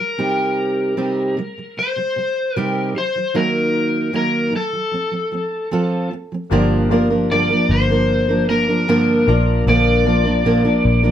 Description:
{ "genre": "pop", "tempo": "76 BPM", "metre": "4/4", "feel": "straight", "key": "unclear", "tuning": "A4 = 442 Hz", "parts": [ { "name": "overdriven slide guitar", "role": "melody", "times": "0.0-11.1 s", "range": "A4 to D5", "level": "-20 LUFS", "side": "left 3 dB", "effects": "none" }, { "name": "fingerpicked steel-string acoustic guitar", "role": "accompaniment", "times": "0.0-11.1 s", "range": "G2 to Bb4", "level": "-18 LUFS", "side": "right 2 dB", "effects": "none" }, { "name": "clear concert grand piano", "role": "accompaniment", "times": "6.5-11.1 s", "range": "Bb3 to D5", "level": "-26 LUFS", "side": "left 5 dB", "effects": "none" }, { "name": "vintage muted fingered electric bass", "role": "bass", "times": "6.5-11.1 s", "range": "G1 to Bb1", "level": "-20 LUFS", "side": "left 1 dB", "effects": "none" } ], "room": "wet small room reverb, RT60 0.5 s", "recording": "none", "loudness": "-15 LUFS", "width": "side -10 dB against mid", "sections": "0.0-6.5 A section; 6.5-11.1 B section", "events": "none", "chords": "0.2 Cm; 3.0 Ebm; 4.9 F; 6.5 Gm7; 9.3 Bb" }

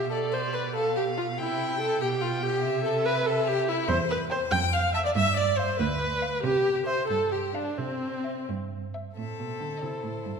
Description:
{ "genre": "quick classical-period movement for string quartet", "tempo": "85-98 BPM (dotted quarters)", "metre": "6/8", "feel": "rubato", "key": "C major", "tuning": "A4 = 441 Hz", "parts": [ { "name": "clear violin", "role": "melody", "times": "0.0-10.4 s", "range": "C4 to G5", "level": "-33 LUFS", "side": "left 7 dB", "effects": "none" }, { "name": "warm violin", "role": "second line", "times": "0.0-10.4 s", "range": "A4 to A5", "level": "-35 LUFS", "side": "left 4 dB", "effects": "none" }, { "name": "rich viola", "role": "accompaniment", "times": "0.0-10.4 s", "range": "C4 to G5", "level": "-27 LUFS", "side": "right 2 dB", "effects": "none" }, { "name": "clear cello", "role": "bass", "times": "0.0-10.4 s", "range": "D2 to D3", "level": "-32 LUFS", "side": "right 4 dB", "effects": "none" } ], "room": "wet concert hall reverb, RT60 2.2 s", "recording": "minimal, uncompressed stereo recording", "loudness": "-25 LUFS", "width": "side -6 dB against mid", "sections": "0.0-9.2 A section; 9.2-10.4 B section", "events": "none", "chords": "0.1 Bm7b5; 1.4 C; 2.0 G/B; 2.6 C; 3.9 Cmaj7/E; 4.5 F; 5.2 G7; 6.4 C; 7.1 Dmadd11/G; 7.8 C; 9.2 Am" }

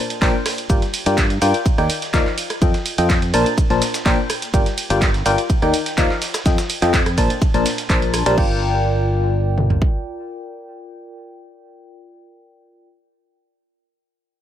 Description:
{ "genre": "piano house", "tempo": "125 BPM", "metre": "4/4", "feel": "straight", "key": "G minor", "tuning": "A4 = 438 Hz", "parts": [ { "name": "punchy analog drum machine", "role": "drums", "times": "0.1-8.5 s", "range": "crash cymbal, handclaps, hi-hat, ride cymbal, rim click", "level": "-24 LUFS", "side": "right 2 dB", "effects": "none" }, { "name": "barking FM electric piano", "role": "riff", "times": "0.2-12.9 s", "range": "Bb2 to A5", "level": "-20 LUFS", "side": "left 2 dB", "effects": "chorus, sidechain pumping, ping-pong delay" }, { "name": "modern bright fingered electric bass", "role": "bass", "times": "0.2-9.8 s", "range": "G1 to G2", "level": "-21 LUFS", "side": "equal", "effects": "sidechain pumping" }, { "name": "dusty soul sampler-style drum kit", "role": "drums", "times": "0.2-8.4 s", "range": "hi-hat, shaker, snare drum", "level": "-30 LUFS", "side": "equal", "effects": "high-pass filter on snare, high-pass filter on perc, high-pass filter on hats" }, { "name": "house drum kit", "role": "drums", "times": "0.2-9.9 s", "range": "kick drum, toms", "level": "-18 LUFS", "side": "equal", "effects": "none" } ], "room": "light reverb", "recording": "none", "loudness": "-16 LUFS", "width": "side -10 dB against mid", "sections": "0.0-8.4 A section; 8.4-12.2 B section", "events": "drop 0.0-8.4", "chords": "0.0 Bbadd9; 0.7 Gm7; 1.7 Ebmaj7; 2.4 F9; 3.3 Bbmaj9; 4.5 Gm7; 5.5 Ebmaj7; 6.2 F9; 7.2 Bbmaj9; 8.4 Gm7" }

